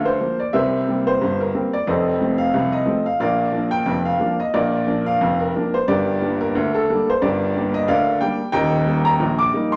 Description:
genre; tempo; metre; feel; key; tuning
ragtime piano; 90 BPM; 2/4; swing 58% on 16ths; Bb major; A4 = 441 Hz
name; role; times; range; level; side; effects
clear upright piano; solo; 0.0-9.8 s; Eb1 to D6; -20 LUFS; equal; none
room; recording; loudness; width
wet large studio reverb, RT60 0.9 s; none; -20 LUFS; mono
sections
0.0-9.8 A section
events
none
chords
0.0 Bb/D; 0.5 C5; 1.9 F; 3.2 Bb; 5.9 Gm; 8.5 Eb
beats
| 0.55 1.21 | 1.88 2.54 | 3.21 3.88 | 4.54 5.21 | 5.87 6.54 | 7.20 7.87 | 8.53 9.20

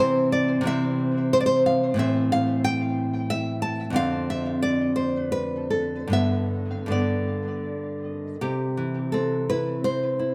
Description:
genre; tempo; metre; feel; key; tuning
romantic piece for solo classical guitar; 70-93 BPM; 3/4; rubato; C major; A4 = 439 Hz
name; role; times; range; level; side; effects
nylon-string guitar; solo; 0.0-10.3 s; F2 to A5; -24 LUFS; equal; tape echo
room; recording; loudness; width
moderate recital hall reverb, RT60 1.7 s; close, detailed microphones; -25 LUFS; mono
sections
0.0-8.4 A section; 8.4-10.3 B section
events
none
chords
0.0 C; 2.0 Am; 4.0 Dm7/F; 6.2 G; 8.4 C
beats
| 0.01 0.67 1.34 | 2.01 2.66 3.31 | 3.98 4.64 5.33 | 6.16 6.94 7.69 | 8.43 9.14 9.86

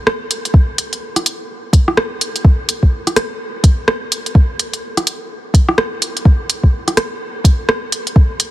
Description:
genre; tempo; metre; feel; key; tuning
future garage; 126 BPM; 4/4; swing 60% on 16ths; none; none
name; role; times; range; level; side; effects
organic electronic drum kit; drums; 0.1-8.5 s; hi-hat, rim click; -18 LUFS; right 1 dB; studio reverb
electronic kick drum; drums; 0.5-8.3 s; none; -9 LUFS; equal; studio reverb
room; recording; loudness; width
light reverb; heavily compressed radio sound, multiband compression; -13 LUFS; side -16 dB against mid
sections
0.0-8.5 A section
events
none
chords
none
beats
0.06 | 0.54 1.02 1.49 1.97 | 2.44 2.92 3.40 3.87 | 4.35 4.83 5.30 5.78 | 6.25 6.73 7.21 7.68 | 8.16

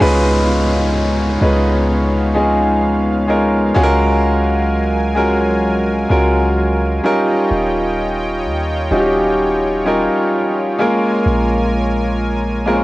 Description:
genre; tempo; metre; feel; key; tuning
contemporary R&B; 64 BPM; 4/4; swing 58% on 16ths; unclear; A4 = 441 Hz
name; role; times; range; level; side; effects
clear grand piano; accompaniment; 0.0-12.8 s; G3 to Db5; -15 LUFS; equal; cassette tape
warm analog pad; sustained chords; 0.0-12.8 s; Gb3 to Ab5; -23 LUFS; equal; chorus, tremolo, cassette tape
clean 808-style bass; bass; 0.0-12.8 s; Eb1 to Eb2; -20 LUFS; equal; none
downlifter; sound effects; 0.0-7.5 s; none; -29 LUFS; equal; none
room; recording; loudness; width
light reverb, digital ambience; home recording on cassette; -13 LUFS; side -18 dB against mid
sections
0.0-12.8 A section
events
none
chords
0.0 Db9; 3.8 Gbmaj9/Db; 7.0 Eb9; 10.8 Bbm7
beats
| 0.01 0.95 1.89 2.82 | 3.76 4.70 5.64 6.57 | 7.51 8.45 9.39 10.32 | 11.26 12.20

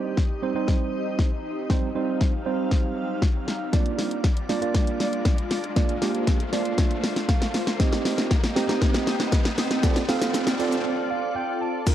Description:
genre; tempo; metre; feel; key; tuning
dance-pop; 118 BPM; 4/4; straight; Bb major; A4 = 440 Hz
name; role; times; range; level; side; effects
tine electric piano; accompaniment; 0.0-11.9 s; G3 to A5; -27 LUFS; right 7 dB; sidechain pumping, cassette tape
glassy FM pad; sustained chords; 0.0-11.9 s; D3 to F5; -30 LUFS; left 2 dB; ensemble chorus, built-in reverb, sidechain pumping, cassette tape
riser and impact; sound effects; 0.3-11.9 s; none; -34 LUFS; left 1 dB; none
pop drum kit; drums; 0.2-11.9 s; crash cymbal, hi-hat, kick drum, shaker, snare drum; -22 LUFS; left 1 dB; cassette tape
room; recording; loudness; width
light reverb; home recording on cassette; -22 LUFS; side -11 dB against mid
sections
0.0-11.9 A section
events
build-up 0.0-11.9; drum fill 0.0-10.9; riser 0.3-11.9; tine electric piano fill 7.0-7.8, 10.9-11.9; break 10.9-11.9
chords
0.0 Cm; 3.7 Bb; 7.8 Cm; 9.8 F6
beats
0.17 0.68 1.19 | 1.70 2.21 2.71 3.22 | 3.73 4.24 4.75 5.26 | 5.77 6.28 6.78 7.29 | 7.80 8.31 8.82 9.32 | 9.83 10.34 10.85 11.36 | 11.87

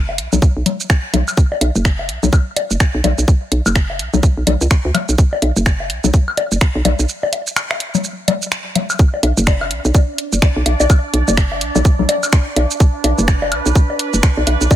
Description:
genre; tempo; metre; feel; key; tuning
minimal techno; 126 BPM; 4/4; swing 60% on 16ths; B minor; A4 = 435 Hz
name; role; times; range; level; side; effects
hollow knocking FM bass; bass; 0.0-14.7 s; F#1 to D2; -16 LUFS; equal; sidechain pumping
woodblock, congas and bongos; percussion; 0.1-14.8 s; none; -20 LUFS; left 4 dB; overdrive, dub echo
garage drum kit; drums; 0.2-14.8 s; finger snaps, hi-hat, shaker; -21 LUFS; right 2 dB; none
electronic kick drum; drums; 0.4-14.8 s; none; -12 LUFS; equal; none
bubbling stepped-filter texture; texture; 9.3-14.8 s; D4 to D5; -24 LUFS; right 3 dB; chorus, built-in reverb, sidechain pumping
room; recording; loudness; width
little or no reverb; none; -13 LUFS; side -12 dB against mid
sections
0.0-9.0 A section; 9.0-14.8 B section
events
break 7.1-9.0; drop 9.0-14.8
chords
0.0 B5; 9.0 Bm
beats
0.42 0.90 | 1.37 1.85 2.33 2.80 | 3.28 3.75 4.23 4.71 | 5.18 5.66 6.14 6.61 | 7.09 7.57 8.04 8.52 | 8.99 9.47 9.95 10.42 | 10.90 11.37 11.85 12.33 | 12.80 13.28 13.76 14.23 | 14.71

